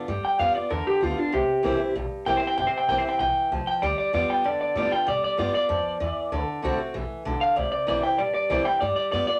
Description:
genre	rockabilly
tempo	192 BPM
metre	4/4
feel	straight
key	G mixolydian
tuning	A4 = 440 Hz
part	picked acoustic archtop guitar	accompaniment	0.0-9.4 s	G2 to F#4	-32 LUFS	equal	none
part	upright bass	bass	0.1-9.3 s	G1 to B2	-36 LUFS	equal	none
part	electric guitar through a small old amp	melody	0.2-9.4 s	D4 to G5	-25 LUFS	equal	none
room	moderate small room ambience, RT60 0.5 s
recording	none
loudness	-25 LUFS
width	mono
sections	0.0-9.4 A section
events	clean electric guitar solo 0.0-9.4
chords	0.0 G7; 1.3 C7; 3.8 G7; 6.3 D7; 7.6 C7; 8.8 G7

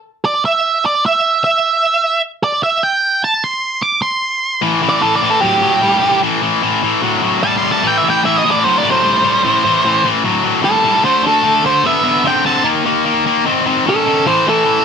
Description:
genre	rock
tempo	150 BPM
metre	4/4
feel	straight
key	A minor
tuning	A4 = 440 Hz
part	octave-fuzz lead guitar	melody	0.3-14.8 s	G4 to D6	-13 LUFS	right 2 dB	distortion
part	tight distorted guitar	riff	4.6-14.8 s	A2 to C#4	-14 LUFS	left 3 dB	distortion
room	light reverb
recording	none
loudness	-12 LUFS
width	side -6 dB against mid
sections	0.0-4.6 A section; 4.6-14.8 B section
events	lead electric guitar solo 0.0-4.6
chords	0.0 N.C.; 4.6 Am7; 11.0 Dsus2; 12.6 D#5; 14.3 A5

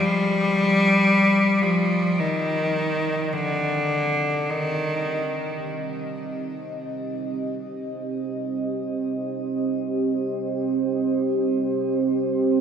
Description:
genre	dark ambient drone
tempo	free time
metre	none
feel	none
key	C minor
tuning	A4 = 443 Hz
part	bright cello	melody	0.0-5.6 s	D3 to G3	-20 LUFS	left 1 dB	shimmer reverb, diffuse ambient delay
part	deep dark ambient pad	sustained chords	4.5-12.6 s	C4 to Eb5	-24 LUFS	right 3 dB	chorus, built-in reverb, shimmer reverb
room	wet cathedral reverb, RT60 5.5 s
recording	in a vast, echoing space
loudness	-21 LUFS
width	side -8 dB against mid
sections	0.0-12.6 A section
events	fade-in on ambient pad 0.0-12.6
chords	0.0 Cm

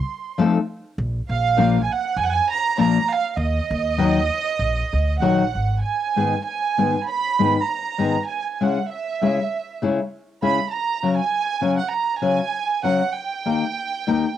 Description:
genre	mexican folk, mariachi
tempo	99 BPM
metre	4/4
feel	swing 54% on 8ths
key	Eb harmonic minor, G# minor from 5.8 s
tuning	A4 = 439 Hz
part	dark chamber violin section	melody	0.0-14.4 s	Eb5 to C6	-22 LUFS	right 6 dB	cassette tape
part	nylon-string guitar	accompaniment	0.4-14.2 s	G#2 to Bb4	-19 LUFS	left 4 dB	cassette tape
part	upright bass	bass	1.0-5.8 s	Ab1 to F2	-23 LUFS	equal	tube saturation
room	light reverb, small room ambience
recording	home recording on cassette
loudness	-19 LUFS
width	side -11 dB against mid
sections	0.0-5.8 A section; 5.8-14.4 B section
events	none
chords	0.0 F7; 1.0 Bb; 3.4 Ebm; 5.8 G#m; 8.3 C#m; 10.7 F#/C#; 13.1 D#

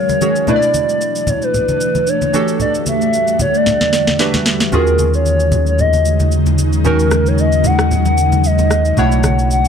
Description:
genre	amapiano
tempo	113 BPM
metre	4/4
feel	swing 55% on 16ths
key	unclear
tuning	A4 = 445 Hz
part	hollow clarinet-like synth lead	melody	0.0-9.7 s	Bb4 to Gb5	-17 LUFS	left 1 dB	chorus, ping-pong delay
part	warm analog keys	accompaniment	0.0-9.7 s	B2 to F5	-21 LUFS	right 2 dB	chorus
part	ethereal airy pad	sustained chords	0.0-9.7 s	Eb2 to F#5	-19 LUFS	left 1 dB	ensemble chorus, built-in reverb, tremolo
part	electronic shaker, snare drum and rim click	drums	0.1-9.7 s	none	-21 LUFS	right 1 dB	none
part	congas	percussion	0.1-9.4 s	none	-23 LUFS	left 1 dB	none
part	sub bass with octave	bass	4.7-9.7 s	B1 to Eb2	-15 LUFS	equal	none
room	moderate small room ambience, RT60 0.5 s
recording	none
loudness	-12 LUFS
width	side -7 dB against mid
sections	0.0-9.7 A section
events	drum fill 3.7-4.7; synth keys fill 3.9-4.7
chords	0.5 Bm7; 2.3 Em11; 4.7 Ebm11; 9.0 Bm11

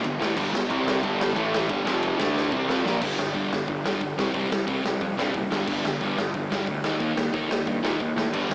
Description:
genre	punk rock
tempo	180 BPM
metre	4/4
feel	straight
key	G dorian, G minor from 3.0 s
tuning	A4 = 441 Hz
part	sludgy distorted guitar	riff	0.0-8.5 s	F2 to F4	-27 LUFS	left 1 dB	overdrive, cassette tape
part	fuzz picked electric bass	bass	0.0-8.5 s	F1 to Bb2	-30 LUFS	equal	overdrive
part	raw garage drum kit	drums	0.0-8.5 s	crash cymbal, hi-hat, kick drum, ride cymbal, snare drum	-27 LUFS	equal	cassette tape
part	distorted electric guitar	riff	0.4-3.0, 8.3-8.5 s	F2 to F4	-29 LUFS	right 2 dB	overdrive, cassette tape
room	studio reverb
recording	home recording on cassette, small speaker sound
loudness	-23 LUFS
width	side -27 dB against mid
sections	0.0-3.0 A section; 3.0-8.5 B section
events	drum fill 2.4-3.0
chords	0.0 G5; 0.7 C5; 1.0 G5; 1.4 A5; 1.7 G5; 1.9 F5; 2.2 D5; 2.5 Gm; 3.0 G5; 4.2 C5; 5.5 G5; 6.8 Eb5

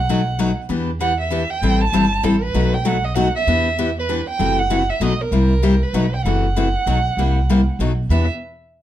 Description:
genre	acoustic string swing (jazz manouche)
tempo	194 BPM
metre	3/4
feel	swing 61% on 8ths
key	E minor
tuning	A4 = 439 Hz
part	warm violin	melody	0.0-8.3 s	A4 to A5	-22 LUFS	right 4 dB	none
part	upright bass	bass	0.0-8.3 s	F#1 to E2	-20 LUFS	equal	none
part	picked steel-string acoustic guitar	accompaniment	0.1-8.3 s	B2 to A4	-20 LUFS	left 3 dB	none
room	moderate studio reverb, RT60 0.7 s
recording	dark, warm production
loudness	-16 LUFS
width	side -12 dB against mid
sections	0.0-4.4 A section; 4.4-8.1 B section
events	none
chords	0.0 B7; 0.7 Em7; 1.6 Am7; 2.5 B7; 3.5 Em7; 4.4 F#m7b5; 5.0 B7; 5.3 C7; 5.9 B7; 6.2 F#m7b5; 6.9 B7; 7.2 C7; 7.8 B7; 8.1 Em7

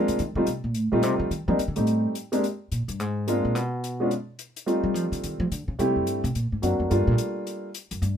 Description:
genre	jazz piano trio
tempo	215 BPM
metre	4/4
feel	swing 61% on 8ths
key	F mixolydian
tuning	A4 = 440 Hz
part	warm upright piano	melody	0.0-7.7 s	F#3 to G4	-24 LUFS	equal	none
part	upright bass	bass	0.0-8.2 s	E2 to G3	-26 LUFS	equal	none
part	hi-hat	drums	0.1-8.1 s	none	-39 LUFS	left 7 dB	none
room	light reverb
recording	minimal, uncompressed stereo recording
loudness	-23 LUFS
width	side -8 dB against mid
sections	0.0-8.2 A section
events	upright bass solo 0.0-8.2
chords	0.2 F7; 1.9 Am7b5; 2.4 Bb7; 3.6 N.C.; 4.7 F7; 5.8 Am7; 6.3 D7alt; 6.9 Gm7

